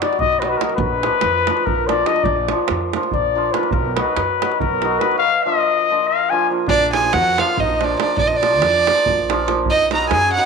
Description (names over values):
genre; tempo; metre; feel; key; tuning
balkan folk, Balkan wedding band; 284 BPM (eighths); 7/8; straight; Bb phrygian dominant; A4 = 440 Hz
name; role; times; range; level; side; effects
dark trumpet; second line; 0.0-10.5 s; D4 to Ab5; -19 LUFS; left 7 dB; none
hammered dulcimer; accompaniment; 0.0-10.5 s; F3 to F#4; -23 LUFS; right 2 dB; none
davul; percussion; 0.0-10.2 s; none; -24 LUFS; right 8 dB; none
upright bass; bass; 0.2-10.4 s; Bb1 to F#2; -26 LUFS; right 1 dB; none
warm violin; melody; 6.7-10.5 s; D5 to Bb5; -16 LUFS; right 3 dB; none
room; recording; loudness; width
wet spring reverb, RT60 1.3 s, studio reverb; 1960s-style stereo with parts hard left and right; -15 LUFS; side -5 dB against mid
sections
0.0-6.7 A section; 6.7-10.5 B section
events
trumpet solo 0.0-6.7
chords
0.0 B; 0.8 Bb; 3.7 B; 5.2 Bb; 9.7 B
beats
0.16 0.37 0.58 | 0.79 1.00 1.21 1.42 1.63 1.84 2.05 | 2.26 2.47 2.68 2.89 3.10 3.31 3.52 | 3.73 3.94 4.15 4.36 4.58 4.79 5.00 | 5.21 5.42 5.63 5.84 6.05 6.26 6.48 | 6.69 6.90 7.11 7.32 7.54 7.75 7.96 | 8.17 8.38 8.60 8.81 9.02 9.23 9.45 | 9.66 9.87 10.08 10.30